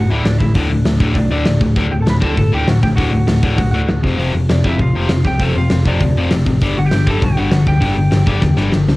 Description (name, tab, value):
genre	punk rock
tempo	198 BPM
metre	4/4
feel	straight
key	unclear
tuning	A4 = 440 Hz
part	lightly driven lead guitar	melody	0.0-8.8 s	D4 to B5	-24 LUFS	right 2 dB	cassette tape, analog delay
part	cranked stack guitar	riff	0.0-9.0 s	D2 to G3	-16 LUFS	left 2 dB	overdrive, cassette tape
part	overdriven picked electric bass	bass	0.0-9.0 s	D1 to E2	-18 LUFS	equal	none
part	big rock drum kit	drums	0.3-8.9 s	hi-hat, kick drum, snare drum	-18 LUFS	equal	cassette tape
room	little or no reverb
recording	home recording on cassette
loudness	-12 LUFS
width	side -20 dB against mid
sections	0.0-9.0 A section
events	drum fill 8.4-9.0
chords	0.0 D; 4.0 F5; 6.6 G5